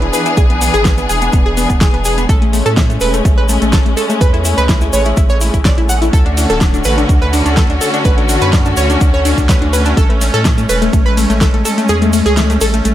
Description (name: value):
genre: progressive house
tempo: 125 BPM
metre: 4/4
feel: straight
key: A major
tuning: A4 = 441 Hz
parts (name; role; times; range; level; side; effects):
- rich symphonic string section; sustained chords; 0.0-12.9 s; D3 to G#4; -17 LUFS; left 1 dB; sidechain pumping
- analog pluck; arpeggios; 0.0-12.9 s; A3 to F#5; -17 LUFS; left 1 dB; chorus, sidechain pumping, analog delay
- saturated sub bass; bass; 0.0-12.9 s; D1 to A2; -16 LUFS; equal; sidechain pumping
- deep house drum kit; drums; 0.0-12.9 s; hi-hat, ride cymbal, snare drum; -21 LUFS; equal; sidechain pumping on hats, sidechain pumping on cymbals
- tube shaker; percussion; 0.1-12.9 s; none; -26 LUFS; left 1 dB; none
- electronic kick drum; drums; 0.4-11.5 s; none; -12 LUFS; equal; none
room: light reverb, digital ambience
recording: none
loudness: -10 LUFS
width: side -12 dB against mid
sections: 0.0-12.9 A section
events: kick drops out 11.9-12.9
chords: 0.0 E7; 2.3 Amaj7; 6.1 Dmaj7; 10.0 Amaj7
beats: | 0.37 0.85 1.33 1.81 | 2.29 2.77 3.25 3.73 | 4.21 4.69 5.17 5.65 | 6.13 6.61 7.09 7.57 | 8.05 8.53 9.01 9.49 | 9.97 10.45 10.93 11.41 | 11.89 12.37 12.85